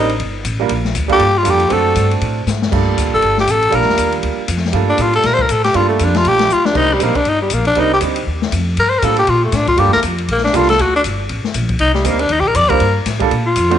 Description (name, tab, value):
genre	jazz, small-group swing and bop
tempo	238 BPM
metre	4/4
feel	swing 59% on 8ths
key	G minor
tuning	A4 = 440 Hz
part	growling tenor saxophone	melody	0.0-13.8 s	G3 to D5	-14 LUFS	left 2 dB	none
part	clear baby grand piano	accompaniment	0.0-13.8 s	G3 to C5	-20 LUFS	right 10 dB	none
part	upright bass	bass	0.0-13.8 s	F1 to Bb2	-19 LUFS	equal	none
part	open jazz drum kit	drums	0.1-13.8 s	crash cymbal, hi-hat, kick drum, ride cymbal, snare drum	-22 LUFS	left 4 dB	none
room	moderate echo chamber reverb, RT60 1.6 s, small room ambience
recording	1960s-style stereo, nothing above 10.8 kHz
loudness	-12 LUFS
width	side -10 dB against mid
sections	0.0-2.7 A section; 2.7-13.8 A section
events	tenor saxophone solo 0.0-13.8; drum fill 2.5, 6.5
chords	0.0 C7(no3) (rootless); 0.7 Gm7; 1.7 D7; 2.7 Gm7; 6.8 Cm7; 8.8 Gm7; 10.8 D5; 11.8 Cm7; 12.8 Gm7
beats	0.20 0.45 | 0.70 0.96 1.21 1.46 | 1.71 1.97 2.22 2.47 | 2.72 2.97 3.23 3.48 | 3.73 3.98 4.23 4.49 | 4.74 4.99 5.24 5.49 | 5.75 6.00 6.25 6.50 | 6.75 7.01 7.26 7.51 | 7.76 8.02 8.27 8.52 | 8.77 9.02 9.28 9.53 | 9.78 10.03 10.29 10.54 | 10.79 11.04 11.29 11.55 | 11.80 12.05 12.30 12.56 | 12.81 13.06 13.31 13.56